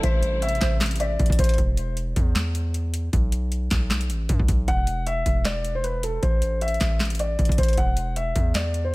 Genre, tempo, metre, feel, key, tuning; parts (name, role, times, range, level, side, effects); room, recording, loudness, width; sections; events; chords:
hip hop, trap; 155 BPM; 4/4; half-time; E minor; A4 = 443 Hz
dark concert grand piano; melody; 0.0-1.6, 4.7-8.9 s; A4 to F#5; -27 LUFS; left 1 dB; low-pass filter, ping-pong delay
glassy wavetable pluck; second line; 0.0-1.5 s; C5 to E5; -36 LUFS; equal; chorus, ping-pong delay
dark symphonic string section; sustained chords; 0.0-1.6 s; C3 to E4; -36 LUFS; equal
distorted 808-style bass; bass; 0.0-8.9 s; E1 to F#2; -25 LUFS; equal; distortion
booming analog drum machine; drums; 0.0-8.8 s; handclaps, hi-hat, kick drum, snare drum; -23 LUFS; equal
studio reverb; -21 LUFS; side -22 dB against mid
0.0-1.6 A section; 1.6-8.9 B section
0.0 Am7; 1.6 N.C.; 3.1 B5; 4.7 Esus2; 6.2 Am; 7.8 E7sus2